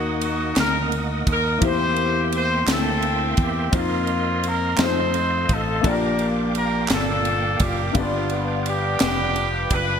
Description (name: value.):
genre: slow gospel.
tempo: 57 BPM (dotted quarters).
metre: 6/8.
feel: straight.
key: Bb major.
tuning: A4 = 440 Hz.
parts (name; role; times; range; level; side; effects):
warm horn section; melody; 0.0-10.0 s; Bb3 to C5; -24 LUFS; equal; ping-pong delay.
clear upright piano; accompaniment; 0.0-10.0 s; G2 to D5; -27 LUFS; left 5 dB; analog chorus.
bright tonewheel organ; sustained chords; 0.0-10.0 s; Bb3 to Eb6; -30 LUFS; right 4 dB; slow rotary speaker, chorus vibrato.
fingered electric bass; bass; 0.0-10.0 s; F1 to F2; -26 LUFS; right 1 dB; none.
crisp fusion drum kit; drums; 0.2-9.9 s; kick drum, ride cymbal, snare drum; -25 LUFS; equal; gated reverb.
group handclap; percussion; 0.6-9.3 s; none; -29 LUFS; right 7 dB; none.
room: light reverb, small room ambience.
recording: bright 1980s-style digital production.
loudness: -19 LUFS.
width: side -7 dB against mid.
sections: 0.0-10.0 A section.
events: none.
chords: 0.0 Ebm; 1.6 C7/E; 3.7 F7sus4; 4.8 F7; 5.8 Bb6; 8.0 G7.